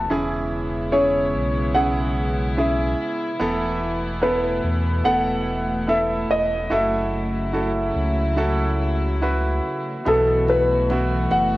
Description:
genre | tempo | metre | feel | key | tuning
pop ballad | 72 BPM | 4/4 | straight | E major | A4 = 444 Hz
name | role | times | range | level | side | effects
clear grand piano | melody | 0.0-11.6 s | A4 to F#5 | -22 LUFS | equal | cassette tape
bright concert grand piano | accompaniment | 0.0-11.6 s | B2 to B4 | -25 LUFS | right 2 dB | cassette tape
warm studio string section | sustained chords | 0.0-11.6 s | B2 to F#4 | -27 LUFS | equal | cassette tape
sub bass with octave | bass | 0.0-11.6 s | E1 to E2 | -25 LUFS | equal | none
picked steel-string acoustic guitar | arpeggios | 10.1-11.6 s | B2 to F#4 | -29 LUFS | left 3 dB | cassette tape
room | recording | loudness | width
light reverb | home recording on cassette | -19 LUFS | side -18 dB against mid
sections
0.0-10.1 A section; 10.1-11.6 B section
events
none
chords
0.1 E6; 3.4 Asus2/E; 6.7 F#m7; 10.1 B7sus4

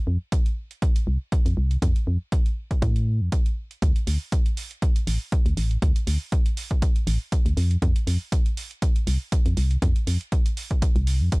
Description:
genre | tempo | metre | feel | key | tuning
deep house | 120 BPM | 4/4 | swing 54% on 16ths | unclear | A4 = 442 Hz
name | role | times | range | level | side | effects
organ-like FM bass | bass | 0.1-11.3 s | A1 to A2 | -22 LUFS | equal | sidechain pumping
electronic hi-hat | drums | 0.3-11.4 s | none | -37 LUFS | right 5 dB | none
electronic kick drum | drums | 0.3-11.4 s | none | -22 LUFS | equal | none
room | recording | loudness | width
digital ambience | dark, warm production | -21 LUFS | side -30 dB against mid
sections
0.0-11.4 A section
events
none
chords
none

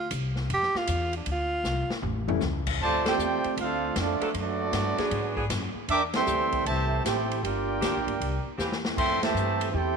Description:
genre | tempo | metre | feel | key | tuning
jazz, big band swing | 156 BPM | 4/4 | swing 66% on 8ths | D minor | A4 = 440 Hz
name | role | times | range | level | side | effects
breathy tenor saxophone | melody | 0.0-1.9 s | D4 to G4 | -29 LUFS | right 1 dB | none
upright bass | bass | 0.0-10.0 s | G1 to G#2 | -32 LUFS | left 1 dB | none
swinging big-band drum kit | drums | 0.1-9.9 s | crash cymbal, hi-hat, kick drum, ride cymbal, snare drum, toms | -33 LUFS | left 1 dB | none
warm concert grand piano | accompaniment | 2.3-2.4 s | E3 to E4 | -30 LUFS | left 13 dB | none
warm trumpet section | melody | 2.8-10.0 s | B3 to D6 | -28 LUFS | equal | none
mellow trombone section | second line | 2.8-10.0 s | C3 to G4 | -31 LUFS | right 10 dB | none
bright saxophone section | sustained chords | 3.0-8.8 s | E3 to A4 | -35 LUFS | equal | none
room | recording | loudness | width
light reverb, studio reverb | 1960s-style stereo with parts hard left and right | -25 LUFS | side -5 dB against mid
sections
0.0-2.8 A section; 2.8-10.0 B section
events
tenor saxophone solo 0.0-2.8; drum fill 1.6-2.4, 8.6-9.0; band accent 3.0, 6.1, 9.2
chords
0.0 Dm7; 2.0 A7; 2.8 Dm7; 4.3 Bm7; 5.1 E7; 5.9 Am7; 7.4 Gm7; 8.2 C7; 9.0 Fmaj9

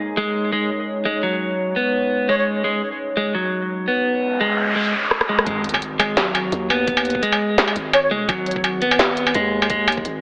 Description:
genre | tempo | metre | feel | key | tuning
half-time drum and bass | 170 BPM | 4/4 | swing 55% on 16ths, half-time | G# minor | A4 = 441 Hz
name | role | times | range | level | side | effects
deep dark ambient pad | sustained chords | 0.0-4.7 s | G#3 to C#5 | -30 LUFS | equal | chorus, built-in reverb, sidechain pumping
clean electric guitar | arpeggios | 0.2-9.9 s | F#3 to B3 | -23 LUFS | equal | dub echo
jazz flute | melody | 2.3-2.4, 7.9-8.1 s | C#5 | -24 LUFS | equal | digital delay
noise sweep and sub drop | sound effects | 4.2-6.9 s | none | -26 LUFS | equal | none
industrial drum kit | drums | 5.1-10.1 s | hi-hat, rim click, snare drum, struck metal | -21 LUFS | equal | none
long sustained 808-style bass | bass | 5.5-10.2 s | G#1 to D#2 | -31 LUFS | equal | none
electronic kick drum | drums | 5.5-10.0 s | none | -32 LUFS | equal | none
room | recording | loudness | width
moderate lush hall reverb, RT60 1.7 s | heavily compressed radio sound, AM radio sound | -20 LUFS | mono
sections
0.0-5.5 A section; 5.5-10.2 B section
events
noise sweep 4.2-5.5; drum fill 5.1-5.5; drop 5.5-10.2; impact 5.5-6.9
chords
0.0 G#5

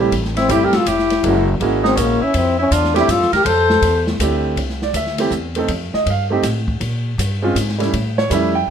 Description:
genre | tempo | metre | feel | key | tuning
jazz, small-group swing and bop | 162 BPM | 3/4 | swing 65% on 8ths | F major | A4 = 440 Hz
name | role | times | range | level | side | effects
warm grand piano | accompaniment | 0.0-8.7 s | G3 to G5 | -19 LUFS | right 3 dB | none
upright bass | bass | 0.0-8.7 s | F1 to Bb2 | -21 LUFS | equal | none
open jazz drum kit | drums | 0.1-8.4 s | hi-hat, kick drum, ride cymbal, snare drum | -24 LUFS | left 1 dB | none
breathy trombone | melody | 0.4-4.1 s | Bb3 to A4 | -17 LUFS | left 4 dB | none
warm tenor saxophone | second line | 0.4-4.1 s | Db4 to C5 | -20 LUFS | right 2 dB | none
room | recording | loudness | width
moderate studio reverb, RT60 0.9 s | none | -15 LUFS | side -8 dB against mid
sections
0.0-4.6 A section; 4.6-8.7 B section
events
none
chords
0.1 Am7; 1.2 Gb9; 2.3 Fmaj13; 4.6 C69; 5.7 F7; 6.8 Bbm7; 7.9 A7

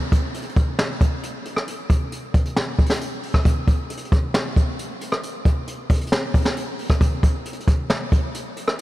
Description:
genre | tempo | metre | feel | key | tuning
hip hop | 135 BPM | 4/4 | half-time | none | none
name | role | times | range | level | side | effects
jazz brush drum kit | drums | 0.1-8.8 s | hi-hat, kick drum, rim click, snare drum | -19 LUFS | equal | none
room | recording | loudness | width
light reverb | none | -19 LUFS | side -17 dB against mid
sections
0.0-8.8 A section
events
none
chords
none

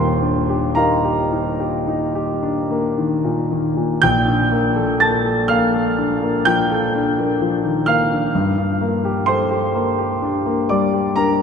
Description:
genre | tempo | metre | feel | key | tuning
classical, impressionist solo piano | 36-44 BPM (dotted quarters) | 9/8 | rubato | Bb major | A4 = 440 Hz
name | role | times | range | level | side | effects
clear concert grand piano | solo | 0.0-11.4 s | Eb1 to A6 | -16 LUFS | left 1 dB | none
room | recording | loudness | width
wet cathedral reverb, RT60 5.7 s | in a vast, echoing space | -16 LUFS | side -6 dB against mid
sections
0.0-4.0 A section; 4.0-11.4 B section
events
none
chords
0.0 Ebmaj7; 4.0 Bbmaj7; 8.3 Gm7

